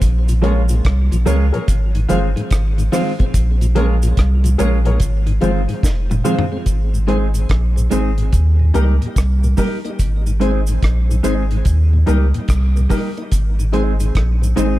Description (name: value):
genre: roots reggae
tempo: 72 BPM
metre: 4/4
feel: swing 65% on 16ths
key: Ab major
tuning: A4 = 440 Hz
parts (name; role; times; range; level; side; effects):
- warm sub bass; bass; 0.0-14.8 s; F1 to Eb2; -15 LUFS; equal; none
- deep reggae drum kit; drums; 0.0-14.8 s; hi-hat, kick drum, rim click, snare drum, toms; -18 LUFS; equal; none
- cabasa; percussion; 0.0-14.8 s; none; -34 LUFS; right 3 dB; none
- mellow tonewheel organ; accompaniment; 0.3-14.7 s; Eb2 to Eb4; -25 LUFS; left 2 dB; slow rotary speaker, dub echo
- mellow electric guitar; accompaniment; 0.4-14.8 s; Eb3 to Ab4; -24 LUFS; right 4 dB; phaser, dub echo
- dark upright piano; stabs; 0.4-14.7 s; Eb4 to Db5; -25 LUFS; left 4 dB; none
room: little or no reverb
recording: echo-heavy mix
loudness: -14 LUFS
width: side -16 dB against mid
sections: 0.0-6.7 A section; 6.7-14.8 B section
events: drum fill 5.8-6.7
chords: 0.0 Bbm7; 1.7 Ab6; 3.3 Bbm7; 5.0 Ab6; 6.7 Ab; 8.3 Eb; 10.0 Ab; 11.7 Eb; 13.3 Ab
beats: | 0.02 0.85 1.68 2.51 | 3.34 4.17 5.00 5.83 | 6.67 7.50 8.33 9.16 | 9.99 10.82 11.65 12.49 | 13.32 14.15